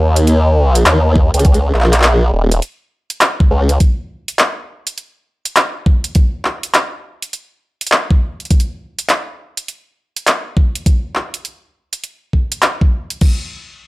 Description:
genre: glitch hop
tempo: 102 BPM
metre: 4/4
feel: swing 64% on 16ths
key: unclear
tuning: A4 = 445 Hz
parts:
  - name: formant-sweep wobble bass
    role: bass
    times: 0.0-3.8 s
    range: Eb1 to Eb2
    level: -11 LUFS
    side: equal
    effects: chorus
  - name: drum and bass drum kit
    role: drums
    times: 0.2-13.4 s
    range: crash cymbal, handclaps, hi-hat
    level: -15 LUFS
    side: equal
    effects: overdrive, studio reverb
  - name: electronic kick drum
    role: drums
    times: 1.2-13.4 s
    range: none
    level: -12 LUFS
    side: equal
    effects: overdrive, studio reverb
room: little or no reverb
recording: dry, gritty hardware recording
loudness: -12 LUFS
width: side -20 dB against mid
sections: 0.0-13.2 A section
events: none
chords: none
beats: 0.27 0.86 | 1.45 2.04 2.62 3.21 | 3.80 4.39 4.98 5.56 | 6.15 6.74 7.33 7.92 | 8.51 9.09 9.68 10.27 | 10.86 11.45 12.04 12.62 | 13.21

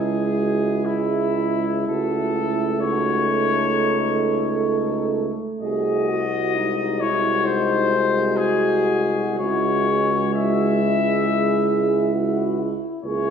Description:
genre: classical, hymn-like piece for brass band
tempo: 65 BPM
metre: 4/4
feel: uneven beats, rubato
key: C# minor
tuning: A4 = 441 Hz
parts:
  - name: warm cornet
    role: melody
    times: 0.0-13.3 s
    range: E4 to E5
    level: -24 LUFS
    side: left 6 dB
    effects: none
  - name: dark French horn section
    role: second line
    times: 0.0-13.3 s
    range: D#4 to A4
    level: -26 LUFS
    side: right 5 dB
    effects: none
  - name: dark trombone section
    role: accompaniment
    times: 0.0-13.3 s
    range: D#4 to F#4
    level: -26 LUFS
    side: left 1 dB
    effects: none
  - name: warm euphonium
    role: accompaniment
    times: 0.0-13.3 s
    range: G#3 to A#3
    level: -26 LUFS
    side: right 2 dB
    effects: none
  - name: clear tuba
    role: bass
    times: 0.0-13.3 s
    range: B#1 to C#2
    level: -26 LUFS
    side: right 1 dB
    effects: none
room: wet scoring stage reverb, RT60 1.5 s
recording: heard from further back in the room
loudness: -19 LUFS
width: side -7 dB against mid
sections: 0.0-13.3 A section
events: none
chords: 0.0 C#m; 1.9 F#m6/C#; 5.6 G#7/B#; 9.4 C#m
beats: 0.85 | 1.89 2.82 3.75 4.68 | 5.62 6.55 7.45 8.37 | 9.40 10.35 11.24 12.14 | 13.04

